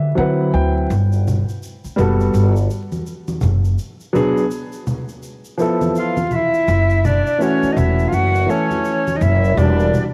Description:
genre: hip hop, jazz-hop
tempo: 83 BPM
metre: 4/4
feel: swing 61% on 16ths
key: unclear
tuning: A4 = 441 Hz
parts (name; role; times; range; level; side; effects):
- dark grand piano; accompaniment; 0.0-10.0 s; E3 to G5; -22 LUFS; equal; cassette tape
- upright bass; bass; 0.0-9.9 s; E1 to D3; -19 LUFS; equal; none
- tube shaker and congas; percussion; 0.9-10.1 s; none; -28 LUFS; equal; none
- breathy tenor saxophone; melody; 6.0-10.1 s; C#4 to F#4; -22 LUFS; equal; cassette tape
- breathy bright jazz flute; second line; 6.0-10.0 s; C#5 to F#5; -26 LUFS; equal; cassette tape
room: light reverb, small room reverb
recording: home recording on cassette, vinyl crackle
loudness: -18 LUFS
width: mono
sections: 0.0-10.1 A section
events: grand piano fill 0.0-0.9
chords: 0.0 D13; 0.9 Gmaj9; 3.8 G#m7b5; 5.2 Fmaj7#11; 6.7 F#m7; 9.6 Em9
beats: 0.17 | 0.90 1.62 2.34 3.07 | 3.79 4.51 5.23 5.96 | 6.68 7.40 8.13 8.85 | 9.57

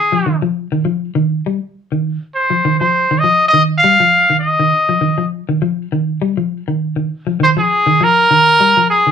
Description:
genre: afrobeat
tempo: 101 BPM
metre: 4/4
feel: swing 54% on 16ths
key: unclear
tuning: A4 = 441 Hz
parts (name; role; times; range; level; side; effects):
- bright trumpet; melody; 0.0-9.1 s; Ab4 to F5; -11 LUFS; equal; none
- clean electric guitar; arpeggios; 0.1-9.1 s; Eb3 to G3; -17 LUFS; left 1 dB; none
room: wet studio reverb, RT60 0.5 s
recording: band playing live in one room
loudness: -12 LUFS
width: side -7 dB against mid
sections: 0.0-9.1 A section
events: none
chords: 0.0 Ebsus2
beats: 0.56 1.15 1.75 | 2.35 2.94 3.54 4.13 | 4.73 5.33 5.92 6.52 | 7.11 7.71 8.30 8.90

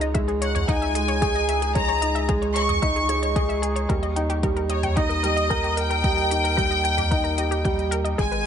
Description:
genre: piano and strings electronica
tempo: 112 BPM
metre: 4/4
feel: straight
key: unclear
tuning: A4 = 437 Hz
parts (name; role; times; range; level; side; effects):
- wide unison pluck; arpeggios; 0.0-8.4 s; G4 to G5; -31 LUFS; left 3 dB; sidechain pumping, ping-pong delay
- felt-muted upright piano; riff; 0.0-8.5 s; G3 to A#4; -26 LUFS; right 2 dB; none
- round analog bass; bass; 0.0-8.5 s; G#1 to D#2; -27 LUFS; equal; sidechain pumping
- organic electronic drum kit; drums; 0.0-8.4 s; hi-hat, toms; -32 LUFS; equal; none
- electronic kick drum; drums; 0.2-8.3 s; none; -26 LUFS; equal; none
- clear studio violin section; melody; 0.4-8.5 s; C#5 to C#6; -25 LUFS; left 1 dB; none
room: light reverb, digital ambience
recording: nothing above 10.7 kHz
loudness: -20 LUFS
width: side -8 dB against mid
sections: 0.0-8.5 A section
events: none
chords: 0.0 C#sus2; 3.9 D#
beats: 0.15 0.68 1.22 | 1.75 2.29 2.83 3.36 | 3.90 4.43 4.97 5.50 | 6.04 6.58 7.11 7.65 | 8.18

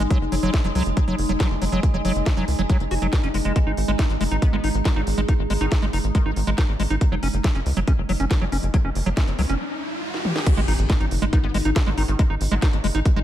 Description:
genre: psychedelic trance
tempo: 139 BPM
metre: 4/4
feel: straight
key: unclear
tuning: A4 = 438 Hz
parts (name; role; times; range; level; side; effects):
- overtone-sweeping drone; sustained chords; 0.0-13.2 s; G#3 to D#4; -30 LUFS; right 1 dB; chorus, built-in reverb, sidechain pumping
- liquid acid bass; riff; 0.0-13.2 s; F#3 to F#4; -26 LUFS; equal; chorus, auto-pan, sidechain pumping, ping-pong delay
- tight sequencer bass; bass; 0.0-13.2 s; F#1 to C#2; -23 LUFS; equal; none
- garage drum kit; drums; 0.0-13.1 s; crash cymbal, hi-hat, snare drum, toms; -30 LUFS; equal; none
- electronic kick drum; drums; 0.1-13.1 s; none; -20 LUFS; equal; none
- resonant blip pluck; second line; 4.4-6.6, 11.3-12.7 s; D#3 to B3; -38 LUFS; left 2 dB; phaser, sidechain pumping, high-pass filter, digital delay
- riser and impact; sound effects; 8.5-12.2 s; none; -30 LUFS; equal; none
room: digital ambience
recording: none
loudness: -19 LUFS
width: side -12 dB against mid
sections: 0.0-10.5 A section; 10.5-13.2 B section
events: riser 8.5-10.5; break 9.6-10.5; drum fill 10.1-10.5; drop 10.5-13.2; impact 10.5-12.2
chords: 0.1 F#5; 3.6 G#5; 7.0 F#5; 10.5 G#5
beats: | 0.10 0.54 0.97 1.40 | 1.83 2.26 2.69 3.13 | 3.56 3.99 4.42 4.85 | 5.29 5.72 6.15 6.58 | 7.01 7.44 7.88 8.31 | 8.74 9.17 9.60 10.03 | 10.46 10.90 11.33 11.76 | 12.19 12.62 13.05

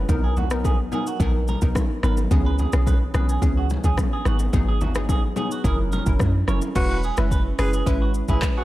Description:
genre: afrobeats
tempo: 108 BPM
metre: 4/4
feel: straight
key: unclear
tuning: A4 = 440 Hz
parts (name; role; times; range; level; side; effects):
- glassy wavetable pluck; accompaniment; 0.0-8.5 s; E3 to B4; -27 LUFS; equal; chorus
- deep log drum bass; bass; 0.0-8.4 s; E1 to F#2; -22 LUFS; equal; none
- afro-pop drum kit; drums; 0.1-8.6 s; crash cymbal, handclaps, hi-hat, kick drum, rim click, shaker; -23 LUFS; equal; none
- congas and bongos; percussion; 0.1-6.7 s; none; -31 LUFS; left 2 dB; none
- clean electric guitar; riff; 0.2-8.6 s; F#4 to C#5; -32 LUFS; right 6 dB; phaser, tape echo
- growling alto saxophone; melody; 6.8-8.6 s; E4 to G#4; -30 LUFS; equal; tape echo
room: digital ambience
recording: none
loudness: -19 LUFS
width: side -16 dB against mid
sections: 0.0-6.8 A section; 6.8-8.6 B section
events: none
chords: 0.1 Bmaj7; 2.3 C#m7; 4.3 G#m7; 5.6 F#7; 6.8 E6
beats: | 0.09 0.64 1.20 1.76 | 2.31 2.87 3.42 3.98 | 4.53 5.09 5.64 6.20 | 6.76 7.31 7.87 8.42

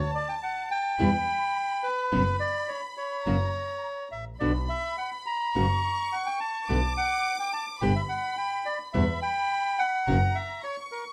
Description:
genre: tango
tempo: 106 BPM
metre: 4/4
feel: rubato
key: unclear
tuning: A4 = 445 Hz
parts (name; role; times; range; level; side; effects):
- bandoneon; melody; 0.0-11.0 s; A#4 to A#5; -31 LUFS; equal; none
- dark studio violin section; second line; 0.0-11.1 s; A5 to D6; -38 LUFS; equal; none
- rich double bass; bass; 0.0-10.3 s; F#1 to E2; -31 LUFS; equal; none
- nylon-string guitar; accompaniment; 1.0-10.2 s; B2 to G4; -31 LUFS; equal; none
room: light reverb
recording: none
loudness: -28 LUFS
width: mono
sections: 0.0-11.1 A section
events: none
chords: 0.0 D; 1.0 Em; 2.1 F#sus4; 3.3 F#; 4.4 Bm; 5.6 F#; 6.7 Bm7; 7.8 G; 8.9 Em; 10.1 F#7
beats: 0.43 0.99 1.56 | 2.13 2.69 3.27 3.84 | 4.41 4.99 5.56 6.13 | 6.70 7.26 7.82 8.38 | 8.94 9.51 10.07 10.64

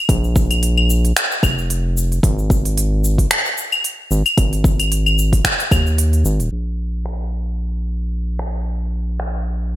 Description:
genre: organic downtempo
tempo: 112 BPM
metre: 4/4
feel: swing 55% on 16ths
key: unclear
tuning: A4 = 440 Hz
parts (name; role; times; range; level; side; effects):
- round analog bass; bass; 0.1-9.8 s; Eb1 to Eb2; -18 LUFS; equal; sidechain pumping
- electronic kick drum; drums; 0.1-5.8 s; none; -16 LUFS; equal; overdrive
- organic electronic drum kit; drums; 0.1-9.8 s; claves, crash cymbal, finger snaps, hi-hat, shaker; -19 LUFS; left 1 dB; gated reverb
room: little or no reverb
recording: bright 1980s-style digital production, low-pass filter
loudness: -16 LUFS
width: side -14 dB against mid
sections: 0.0-6.5 A section; 6.5-9.8 B section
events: none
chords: none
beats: | 0.09 0.63 1.16 1.70 | 2.23 2.77 3.31 3.84 | 4.38 4.91 5.45 5.98 | 6.52 7.05 7.59 8.13 | 8.66 9.20 9.73

